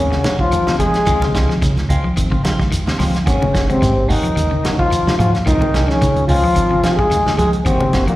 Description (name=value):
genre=afrobeat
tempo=109 BPM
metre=4/4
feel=swing 54% on 16ths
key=unclear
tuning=A4 = 440 Hz
part: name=mellow trombone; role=melody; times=0.0-8.2 s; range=Bb3 to Ab4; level=-18 LUFS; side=left 2 dB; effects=slapback echo
part: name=bright bass trombone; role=second line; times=0.0-8.2 s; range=Bb2 to Ab3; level=-23 LUFS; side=right 2 dB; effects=slapback echo
part: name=reed electric piano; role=accompaniment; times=0.0-8.2 s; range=Db3 to Db4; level=-26 LUFS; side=right 1 dB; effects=overdrive, fast tremolo, slapback echo
part: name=electric guitar at the edge of break-up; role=arpeggios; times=0.0-8.2 s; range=Db3 to Ab3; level=-23 LUFS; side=left 2 dB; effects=spring reverb
part: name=fingered electric bass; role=bass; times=0.0-8.1 s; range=Gb1 to Db3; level=-19 LUFS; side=equal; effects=none
part: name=semi-hollow electric guitar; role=stabs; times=0.1-8.1 s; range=Eb3 to Ab4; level=-27 LUFS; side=right 3 dB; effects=phaser, slapback echo
part: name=warm soul drum kit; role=drums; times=0.1-8.2 s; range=hi-hat, kick drum, snare drum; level=-22 LUFS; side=equal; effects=none
part: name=congas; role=percussion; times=0.2-7.9 s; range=none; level=-23 LUFS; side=equal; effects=none
part: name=shekere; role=percussion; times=0.3-8.1 s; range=none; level=-26 LUFS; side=right 1 dB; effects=none
room=light reverb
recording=live gig heard through the venue's PA, recital hall reverb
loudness=-13 LUFS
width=side -16 dB against mid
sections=0.0-8.2 A section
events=none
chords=0.0 Ab9sus4; 1.1 Dbmaj7; 3.3 Ab9sus4; 5.5 Dbmaj7